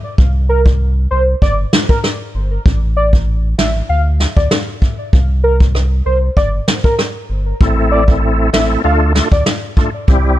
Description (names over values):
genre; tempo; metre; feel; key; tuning
dancehall; 97 BPM; 4/4; straight; unclear; A4 = 440 Hz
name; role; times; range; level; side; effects
sub bass with octave; bass; 0.2-10.4 s; G1 to D2; -15 LUFS; equal; none
vintage brush drum kit; drums; 0.2-10.2 s; kick drum, rim click, snare drum; -13 LUFS; equal; vintage 12-bit sampler grit
warm velvety synth lead; melody; 0.5-9.4 s; Bb4 to F5; -19 LUFS; equal; chorus, tape echo
bright tonewheel organ; accompaniment; 7.6-10.4 s; G3 to A4; -16 LUFS; equal; chorus vibrato, fast rotary speaker
room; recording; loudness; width
small room ambience; none; -11 LUFS; side -14 dB against mid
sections
0.0-10.4 A section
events
none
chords
0.2 N.C.; 7.6 Am; 8.8 Dm